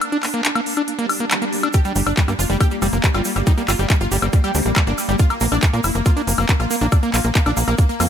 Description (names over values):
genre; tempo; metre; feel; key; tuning
psychedelic trance; 139 BPM; 4/4; straight; unclear; A4 = 440 Hz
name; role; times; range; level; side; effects
evolving wavetable pad; sustained chords; 0.0-8.1 s; Bb3 to D4; -27 LUFS; left 1 dB; ensemble chorus, built-in reverb, sidechain pumping
techno drum kit; drums; 0.0-8.1 s; handclaps, hi-hat, woodblock; -23 LUFS; left 2 dB; none
screaming distorted acid line; riff; 0.1-8.1 s; G3 to D4; -25 LUFS; equal; distortion, chorus, auto-pan, sidechain pumping, digital delay
swell; sound effects; 1.0-1.7 s; none; -29 LUFS; equal; none
supersaw stab; melody; 1.7-8.0 s; G3 to G4; -24 LUFS; right 1 dB; phaser, sidechain pumping, digital delay
electronic kick drum; drums; 1.7-7.9 s; none; -16 LUFS; equal; overdrive
tube shaker; percussion; 1.7-8.1 s; none; -30 LUFS; right 4 dB; none
tight sequencer bass; bass; 2.0-8.1 s; F1 to Bb2; -20 LUFS; equal; tube saturation
vowel-sweep wobble bass; second line; 3.0-4.8 s; Bb3 to C4; -36 LUFS; left 4 dB; none
room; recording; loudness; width
little or no reverb; none; -16 LUFS; side -9 dB against mid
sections
0.0-8.1 A section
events
break 0.0-1.7; swell 1.0-1.7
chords
0.0 Bb5; 1.7 G5; 5.2 Bb5